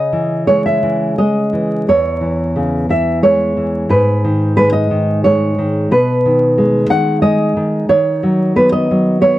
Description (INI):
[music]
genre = romantic piece for solo classical guitar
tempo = 90 BPM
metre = 3/4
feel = rubato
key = C# minor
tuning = A4 = 443 Hz
[part]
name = nylon-string guitar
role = solo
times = 0.0-9.4 s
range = E2 to F#5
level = -12 LUFS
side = equal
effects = none
[sound]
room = light reverb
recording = dry, close 1970s-style studio recording, vinyl crackle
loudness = -12 LUFS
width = side -15 dB against mid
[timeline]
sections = 0.0-9.4 A section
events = none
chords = 0.0 C#m; 1.9 C#m/E; 3.9 G#m; 5.9 G#m/B; 7.9 B/D#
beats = 0.46 1.17 | 1.87 2.56 3.23 | 3.90 4.57 5.24 | 5.91 6.56 7.22 | 7.89 8.55 9.20